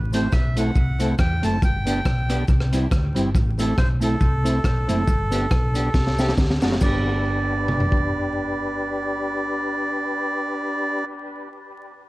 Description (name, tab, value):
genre	ska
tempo	139 BPM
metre	4/4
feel	swing 56% on 8ths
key	G major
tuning	A4 = 437 Hz
part	hollow-body short-scale fingered electric bass	bass	0.0-11.5 s	F#1 to E2	-24 LUFS	equal	none
part	melodica	melody	0.1-11.0 s	A4 to A5	-28 LUFS	right 2 dB	dub echo
part	mellow electric guitar	accompaniment	0.1-11.5 s	G3 to G4	-28 LUFS	right 2 dB	wide subtle chorus, dub echo
part	tonewheel organ	stabs	0.1-11.0 s	B3 to B4	-29 LUFS	left 2 dB	overdrive, chorus vibrato, stopped rotary speaker, dub echo
part	crunchy breakbeat drum kit	drums	0.1-8.0 s	crash cymbal, hi-hat, kick drum, rim click, snare drum, toms	-22 LUFS	equal	none
part	cabasa	percussion	0.1-7.0 s	none	-45 LUFS	left 4 dB	none
room	light reverb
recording	vinyl crackle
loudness	-19 LUFS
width	side -19 dB against mid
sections	0.0-6.8 A section; 6.8-10.3 B section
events	drum fill 5.9-6.8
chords	0.0 Am; 1.6 G; 2.5 C; 3.3 Am; 5.1 G; 5.9 C; 6.4 D; 6.8 G